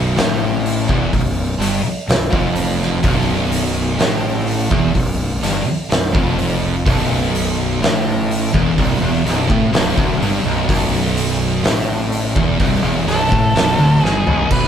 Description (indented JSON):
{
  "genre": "stoner and doom metal",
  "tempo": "63 BPM",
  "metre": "4/4",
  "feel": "straight",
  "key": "unclear",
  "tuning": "A4 = 440 Hz",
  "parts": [
    { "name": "biting overdriven guitar", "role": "riff", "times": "0.0-14.5 s", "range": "B1 to A2", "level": "-22 LUFS", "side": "left 1 dB", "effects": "none" },
    { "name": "thick fuzz guitar", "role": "riff", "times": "0.0-14.7 s", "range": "B1 to A2", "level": "-23 LUFS", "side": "left 5 dB", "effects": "distortion" },
    { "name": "thick fuzz guitar", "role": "riff", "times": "0.0-14.7 s", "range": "B1 to A2", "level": "-22 LUFS", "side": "right 6 dB", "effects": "distortion" },
    { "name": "fuzz fingered electric bass", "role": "bass", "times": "0.0-14.7 s", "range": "B0 to A1", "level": "-22 LUFS", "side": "equal", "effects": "overdrive, tube saturation" },
    { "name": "oversized low-tuned drum kit", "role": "drums", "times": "0.2-14.7 s", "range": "crash cymbal, hi-hat, kick drum, snare drum, toms", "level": "-19 LUFS", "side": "equal", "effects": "none" },
    { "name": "octave-fuzz lead guitar", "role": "melody", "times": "13.1-14.7 s", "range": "A4 to B4", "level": "-18 LUFS", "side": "equal", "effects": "distortion" }
  ],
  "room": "moderate studio reverb, RT60 0.7 s",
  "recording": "band playing live in one room",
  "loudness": "-14 LUFS",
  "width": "side -8 dB against mid",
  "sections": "0.0-14.5 A section",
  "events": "drum fill 14.0-14.5",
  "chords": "0.0 Bm"
}